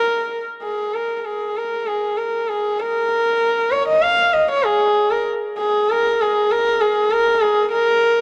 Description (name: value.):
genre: indian classical.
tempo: 98 BPM.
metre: 4/4.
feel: uneven beats.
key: unclear.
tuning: A4 = 440 Hz.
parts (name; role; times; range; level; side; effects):
warm sarangi; solo; 0.0-8.2 s; Ab4 to F5; -19 LUFS; equal; tape echo.
room: light reverb.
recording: dry, close 1970s-style studio recording.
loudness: -19 LUFS.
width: mono.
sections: 0.0-2.8 A section; 2.8-8.2 B section.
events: speeding up 0.0-8.2.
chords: none.